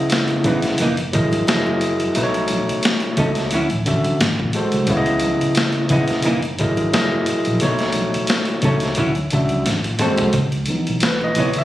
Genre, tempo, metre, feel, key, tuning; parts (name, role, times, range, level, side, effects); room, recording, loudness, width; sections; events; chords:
R&B, neo-soul; 88 BPM; 4/4; swing 56% on 16ths; C# minor; A4 = 443 Hz
overdriven tine electric piano; accompaniment; 0.0-11.6 s; B2 to F#5; -19 LUFS; equal
boom bap sampler-style drum kit; drums; 0.1-11.6 s; hi-hat, kick drum, snare drum, toms; -22 LUFS; equal
congas; percussion; 0.3-11.6 s; -28 LUFS; right 1 dB
archtop guitar, miked and amplified; second line; 0.5-11.5 s; E3 to A4; -20 LUFS; right 2 dB
vintage muted fingered electric bass; bass; 0.5-11.6 s; F#1 to D2; -24 LUFS; equal
light reverb; recorded on a phone in the room, studio reverb; -16 LUFS; side -14 dB against mid
0.0-10.3 A section; 10.3-11.6 B section
drum fill 9.7-10.3; tine electric piano solo 10.3-11.6
0.0 C#m9; 0.8 F#13; 2.2 B9; 3.5 Dmaj9; 4.2 G#7b9; 4.9 C#m9; 6.2 F#13; 7.6 B9; 9.0 Dmaj9; 9.7 G#7b9; 10.3 C#m9